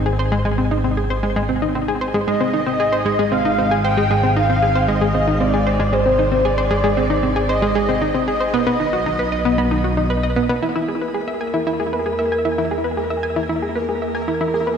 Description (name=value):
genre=ambient, sequencer-driven space music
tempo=115 BPM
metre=4/4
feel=straight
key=E lydian from 10.6 s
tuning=A4 = 437 Hz
part: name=analog drone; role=bass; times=0.0-14.8 s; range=Ab1 to E2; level=-23 LUFS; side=equal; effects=chorus
part: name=analog pluck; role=riff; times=0.1-14.7 s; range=Ab3 to G#5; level=-19 LUFS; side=equal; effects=chorus, vintage 12-bit sampler grit, shimmer reverb, analog delay
part: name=breathy flute-like synth lead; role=melody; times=2.3-10.1 s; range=C5 to G5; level=-20 LUFS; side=equal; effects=ensemble chorus, shimmer reverb, analog delay
part: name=pulsing gated texture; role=texture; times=11.1-14.8 s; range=A#3 to A#4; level=-23 LUFS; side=right 1 dB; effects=chorus, built-in reverb, shimmer reverb
room=wet lush hall reverb, RT60 2.6 s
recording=dreamy mix soaked in reverb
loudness=-16 LUFS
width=side -7 dB against mid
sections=0.0-10.6 A section; 10.6-14.8 B section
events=none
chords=0.0 Ab; 8.5 B; 10.6 E